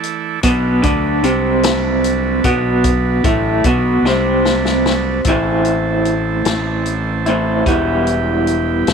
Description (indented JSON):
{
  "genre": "psychedelic rock",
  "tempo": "50 BPM (dotted quarters)",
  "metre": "6/8",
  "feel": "straight",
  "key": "A dorian",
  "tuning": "A4 = 438 Hz",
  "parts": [
    { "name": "combo organ", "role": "sustained chords", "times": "0.0-8.9 s", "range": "E3 to A5", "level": "-23 LUFS", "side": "right 10 dB", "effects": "none" },
    { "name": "vintage drum kit", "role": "drums", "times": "0.0-8.9 s", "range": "hi-hat, kick drum, snare drum", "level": "-20 LUFS", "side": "left 3 dB", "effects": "none" },
    { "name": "electric guitar through a small old amp", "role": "riff", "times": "0.4-8.9 s", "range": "A2 to E4", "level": "-15 LUFS", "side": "right 1 dB", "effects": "tremolo" },
    { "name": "fuzz fingered electric bass", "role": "bass", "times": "0.4-8.9 s", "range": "E1 to D2", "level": "-21 LUFS", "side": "equal", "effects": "overdrive" }
  ],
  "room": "light reverb, studio reverb",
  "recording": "1960s-style stereo",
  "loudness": "-13 LUFS",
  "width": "side -6 dB against mid",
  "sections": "0.0-5.2 A section; 5.2-8.9 B section",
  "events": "drum fill 4.0-5.2",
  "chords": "0.4 Bm7; 5.2 Am; 7.7 Em"
}